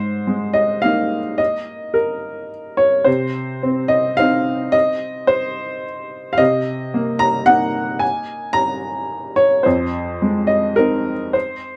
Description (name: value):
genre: neoclassical minimalist piano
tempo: 108 BPM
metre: 3/4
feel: rubato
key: unclear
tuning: A4 = 439 Hz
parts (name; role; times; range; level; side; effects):
- warm upright piano; solo; 0.0-11.8 s; F2 to Bb5; -19 LUFS; equal; none
room: light reverb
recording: none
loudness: -18 LUFS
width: mono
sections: 0.0-11.8 A section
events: none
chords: 0.0 Abadd9; 3.1 Cmadd11; 6.4 Abadd9/C; 9.7 Fm7